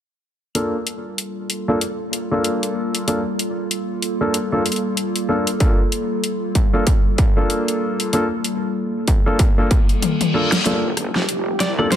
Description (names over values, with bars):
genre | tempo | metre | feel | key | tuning
glitch hop | 95 BPM | 4/4 | swing 58% on 16ths | G minor | A4 = 437 Hz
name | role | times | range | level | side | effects
warm grand piano | stabs | 0.5-11.9 s | Bb3 to A4 | -22 LUFS | equal | sidechain pumping, low-pass filter, tape echo
warbly tape-like pad | sustained chords | 1.0-12.0 s | G3 to A4 | -24 LUFS | left 1 dB | chorus, built-in reverb, sidechain pumping
dubstep drum kit | drums | 0.6-12.0 s | hi-hat, rim click, snare drum, toms | -22 LUFS | left 2 dB | none
electronic kick drum | drums | 5.6-9.9 s | none | -16 LUFS | equal | distortion
reverse cymbal and riser | sound effects | 9.9-12.0 s | none | -28 LUFS | left 2 dB | none
wobble bass | bass | 10.7-12.0 s | F1 to C2 | -27 LUFS | right 1 dB | chorus, overdrive, high-pass filter
warbly tape-like pad | texture | 10.7-12.0 s | G4 to C5 | -27 LUFS | right 3 dB | chorus, built-in reverb, sidechain pumping
lightly driven lead guitar | melody | 11.6-12.0 s | C5 to D5 | -22 LUFS | right 1 dB | none
room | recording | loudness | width
light reverb | none | -17 LUFS | side -10 dB against mid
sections
0.6-10.7 A section; 10.7-12.0 B section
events
reverse cymbal 9.9-10.7; drum fill 10.0-10.7, 10.7-12.0; build-up 10.7-12.0; riser 10.7-12.0; filter sweep on grand piano 10.7-12.0; filter sweep on ambient pad 10.7-12.0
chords
0.6 Gm9